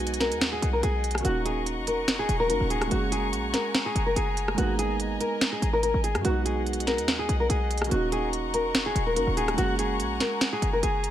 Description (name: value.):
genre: hip hop, trap.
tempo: 144 BPM.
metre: 4/4.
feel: half-time.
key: Eb minor.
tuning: A4 = 440 Hz.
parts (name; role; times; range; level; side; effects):
felt-muted upright piano; accompaniment; 0.0-11.1 s; F#3 to Ab4; -32 LUFS; right 4 dB; low-pass filter.
warm chamber string section; sustained chords; 0.0-11.1 s; Ab4 to Db6; -34 LUFS; left 4 dB; none.
short 808-style bass; bass; 0.0-11.1 s; Eb1 to Ab2; -29 LUFS; equal; none.
trap drum kit; drums; 0.0-11.1 s; hi-hat, rim click, snare drum; -28 LUFS; right 1 dB; none.
nylon-string guitar; melody; 0.2-11.1 s; Gb4 to Bb4; -28 LUFS; left 1 dB; low-pass filter, ping-pong delay.
room: light reverb.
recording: none.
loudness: -23 LUFS.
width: side -11 dB against mid.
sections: 0.0-1.2 A section; 1.2-11.1 A section.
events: none.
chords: 0.0 B6; 1.2 Ebm7; 2.9 Gbadd9; 4.6 Abmadd9; 6.2 B6; 7.9 Ebm7; 9.6 Gbadd9.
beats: 0.00 0.41 0.83 | 1.25 1.66 2.08 2.50 | 2.91 3.33 3.75 4.16 | 4.58 5.00 5.41 5.83 | 6.25 6.66 7.08 7.50 | 7.91 8.33 8.75 9.16 | 9.58 10.00 10.41 10.83.